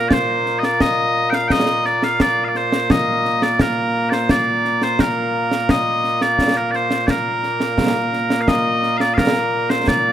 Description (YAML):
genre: scottish traditional, Scottish pipe music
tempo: 86 BPM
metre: 2/4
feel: straight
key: Bb major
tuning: A4 = 440 Hz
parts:
  - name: loud bright bagpipes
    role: melody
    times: 0.0-10.1 s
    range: Bb2 to G5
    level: -17 LUFS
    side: equal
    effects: none
  - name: concert snare drum and concert bass drum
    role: drums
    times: 0.1-10.0 s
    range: none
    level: -20 LUFS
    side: equal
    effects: none
room: light reverb, small room ambience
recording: rough home demo mix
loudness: -15 LUFS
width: side -11 dB against mid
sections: 0.0-8.5 A section; 8.5-10.1 A section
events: none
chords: none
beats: | 0.11 0.81 | 1.50 2.20 | 2.90 3.60 | 4.29 4.99 | 5.69 6.39 | 7.08 7.78 | 8.48 9.18 | 9.88